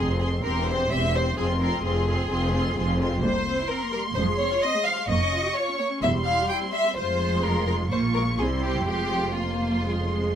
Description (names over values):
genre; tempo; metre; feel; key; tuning
quick classical-period movement for string orchestra; 128 BPM; 4/4; straight; F minor; A4 = 441 Hz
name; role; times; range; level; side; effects
rich studio violin section; melody; 0.0-10.4 s; C6 to Db6; -32 LUFS; left 1 dB; none
rich studio violin section; second line; 0.0-10.3 s; F4 to G5; -27 LUFS; left 1 dB; none
rich studio viola section; accompaniment; 0.0-10.3 s; F3 to Ab4; -30 LUFS; right 1 dB; none
dark studio cello section; bass; 0.0-10.4 s; C2 to C3; -28 LUFS; right 1 dB; none
warm studio double bass section; bass; 0.0-10.4 s; E1 to C2; -29 LUFS; right 1 dB; none
room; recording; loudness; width
little or no reverb; close, detailed microphones; -22 LUFS; side -9 dB against mid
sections
0.0-10.4 A section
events
none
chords
0.4 C/E; 1.4 Fm; 3.2 C7; 4.2 Fm; 5.1 Gm7b5/F; 6.0 C/E; 7.0 Fm; 7.9 Bbm; 8.4 C; 8.9 Fm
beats
0.44 0.91 | 1.38 1.84 2.31 2.77 | 3.23 3.70 4.17 4.63 | 5.09 5.56 6.04 6.50 | 6.98 7.45 7.92 8.40 | 8.88 9.37 9.86 10.35